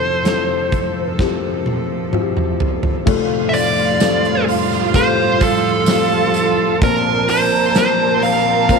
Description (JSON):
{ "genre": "pop ballad", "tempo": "64 BPM", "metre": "4/4", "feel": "straight", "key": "F major", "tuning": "A4 = 440 Hz", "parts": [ { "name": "dark smooth lead guitar", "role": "melody", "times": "0.0-8.8 s", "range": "A4 to F5", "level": "-18 LUFS", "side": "equal", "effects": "overdrive" }, { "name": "felt-muted upright piano", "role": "accompaniment", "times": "0.0-8.8 s", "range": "F1 to C5", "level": "-20 LUFS", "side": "left 11 dB", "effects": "none" }, { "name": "rich chamber string section", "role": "sustained chords", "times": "0.0-8.8 s", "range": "F2 to A4", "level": "-24 LUFS", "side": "right 3 dB", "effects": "none" }, { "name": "huge arena drum kit", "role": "drums", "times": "0.3-8.8 s", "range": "crash cymbal, hi-hat, kick drum, snare drum, toms", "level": "-21 LUFS", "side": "right 2 dB", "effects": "none" }, { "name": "warm studio violin section", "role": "second line", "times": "3.1-8.8 s", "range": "F4 to A5", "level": "-20 LUFS", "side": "right 14 dB", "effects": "tape echo" }, { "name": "tambourine", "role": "percussion", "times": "3.5-8.8 s", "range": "none", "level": "-32 LUFS", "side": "right 18 dB", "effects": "none" } ], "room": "moderate echo chamber reverb, RT60 2.3 s", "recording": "1960s-style stereo with parts hard left and right", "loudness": "-14 LUFS", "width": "side -5 dB against mid", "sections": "0.0-3.1 A section; 3.1-8.8 B section", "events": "drum fill 1.2-3.1", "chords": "0.0 Fmaj7; 3.1 Fadd9; 6.8 Bbsus2" }